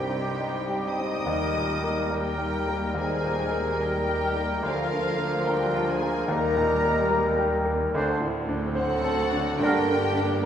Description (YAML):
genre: classical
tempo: 72 BPM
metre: 4/4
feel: rubato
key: unclear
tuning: A4 = 440 Hz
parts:
  - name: clear concert grand piano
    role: melody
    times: 0.0-10.5 s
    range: C2 to C5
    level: -28 LUFS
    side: equal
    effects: none
  - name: warm studio violin section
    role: melody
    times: 0.0-10.5 s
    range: F5 to Eb6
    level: -34 LUFS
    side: left 2 dB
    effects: none
  - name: clear clarinet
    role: second line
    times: 0.0-10.0 s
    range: D4 to Eb4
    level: -36 LUFS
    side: left 2 dB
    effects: none
  - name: hollow flute section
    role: second line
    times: 0.0-10.5 s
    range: A4 to G5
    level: -34 LUFS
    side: equal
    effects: none
  - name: warm oboe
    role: second line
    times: 0.0-9.9 s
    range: G4 to C5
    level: -38 LUFS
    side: right 1 dB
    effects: none
  - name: warm studio violin section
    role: second line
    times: 0.0-10.5 s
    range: F4 to Eb5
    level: -36 LUFS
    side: left 3 dB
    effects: none
  - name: mellow bassoon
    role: accompaniment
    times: 0.0-9.9 s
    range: D3 to G3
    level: -34 LUFS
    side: right 2 dB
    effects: none
  - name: warm studio viola section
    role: accompaniment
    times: 0.0-10.5 s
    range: F3 to Eb4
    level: -35 LUFS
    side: right 2 dB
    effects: none
  - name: clear trombone section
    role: sustained chords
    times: 0.0-9.9 s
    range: D3 to Eb4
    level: -35 LUFS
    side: right 1 dB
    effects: none
  - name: dark French horn section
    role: sustained chords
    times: 0.0-10.5 s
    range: F3 to Eb4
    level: -33 LUFS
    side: left 4 dB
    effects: none
  - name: warm trumpet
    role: stabs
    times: 0.0-9.9 s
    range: G4 to C5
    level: -34 LUFS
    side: equal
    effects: none
  - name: dark studio double bass section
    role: bass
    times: 0.0-10.5 s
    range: G1 to Eb2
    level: -36 LUFS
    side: right 2 dB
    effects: none
  - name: warm studio cello section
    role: bass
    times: 0.0-10.5 s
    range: D2 to C3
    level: -37 LUFS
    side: right 2 dB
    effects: none
  - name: timpani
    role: percussion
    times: 0.0-0.8 s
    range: none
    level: barely audible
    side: none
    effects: none
room: wet recital hall reverb, RT60 1.8 s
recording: recorded in a church or concert hall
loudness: -23 LUFS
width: side -9 dB against mid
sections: 0.0-10.5 A section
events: none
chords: 0.0 Cm; 1.3 Eb; 4.7 Bb/D; 6.3 Eb; 8.0 D7; 9.6 Gm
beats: 0.42 | 1.31 2.14 2.97 3.82 | 4.66 5.48 6.32 7.14 | 7.96 8.78 9.63